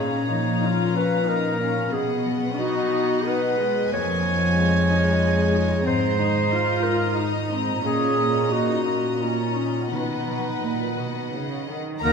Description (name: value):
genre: cinematic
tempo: 82-94 BPM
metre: 3/4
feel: rubato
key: unclear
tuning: A4 = 440 Hz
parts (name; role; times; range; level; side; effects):
- warm clarinet; second line; 0.0-12.1 s; D#4 to Db5; -25 LUFS; right 1 dB; none
- warm studio violin section; second line; 0.0-12.1 s; D#5 to Bb5; -30 LUFS; left 4 dB; none
- warm studio viola section; accompaniment; 0.0-12.1 s; Ab3 to B4; -28 LUFS; left 1 dB; none
- concert harp; arpeggios; 0.0-12.1 s; F2 to B4; -27 LUFS; left 4 dB; none
- warm symphonic cello section; bass; 0.0-12.1 s; F2 to D#3; -28 LUFS; right 4 dB; none
- dark chamber violin section; melody; 12.0-12.1 s; Bb5; -24 LUFS; left 3 dB; none
- warm oboe; second line; 12.0-12.1 s; Bb4; -23 LUFS; right 3 dB; none
- mellow French horn section; sustained chords; 12.0-12.1 s; Bb3; -24 LUFS; right 1 dB; none
- dark studio double bass section; bass; 12.0-12.1 s; Eb2; -28 LUFS; right 2 dB; none
room: wet scoring stage reverb, RT60 1.7 s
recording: minimal, uncompressed stereo recording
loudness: -20 LUFS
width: side -6 dB against mid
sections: 0.0-12.0 A section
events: none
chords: 0.0 Bbm; 1.9 B; 3.9 Fm7b5; 5.9 Abadd9; 7.8 Ebm7/Bb; 9.9 B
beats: 0.63 1.28 | 1.94 2.58 3.26 | 3.92 4.58 5.22 | 5.86 6.52 7.18 | 7.84 8.51 9.20 | 9.91 10.63 11.34 | 12.04